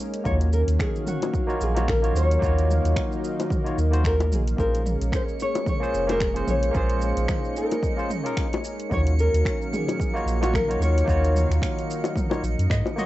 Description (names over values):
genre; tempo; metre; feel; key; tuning
sunset chillout; 111 BPM; 4/4; swing 57% on 16ths; unclear; A4 = 438 Hz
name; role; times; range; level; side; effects
lush unison pad; sustained chords; 0.0-13.1 s; Eb3 to F5; -30 LUFS; equal; chorus, cassette tape
deep house drum kit; drums; 0.1-13.1 s; finger snaps, hi-hat, shaker, toms; -34 LUFS; right 1 dB; overdrive, cassette tape
barky tine electric piano; accompaniment; 0.2-13.1 s; Bb3 to Eb5; -30 LUFS; moving between left 3 dB and right 4 dB; auto-pan, cassette tape, tape echo
nylon-string guitar; melody; 0.3-13.1 s; Gb4 to Eb5; -28 LUFS; left 2 dB; cassette tape, analog delay
warm sub bass; bass; 0.3-12.8 s; F1 to Ab2; -22 LUFS; equal; none
electronic kick drum; drums; 0.3-12.8 s; none; -28 LUFS; equal; overdrive, cassette tape
bongos; percussion; 1.2-12.9 s; none; -29 LUFS; left 4 dB; none
drifting glass-harmonics texture; texture; 5.3-13.1 s; Db7; -40 LUFS; right 4 dB; chorus, built-in reverb, cassette tape
room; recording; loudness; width
light reverb; home recording on cassette, nothing above 8.0 kHz; -21 LUFS; side -16 dB against mid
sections
0.0-13.1 A section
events
band accent 12.7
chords
0.3 Ebm9; 4.6 Bbm9; 8.9 Ebm9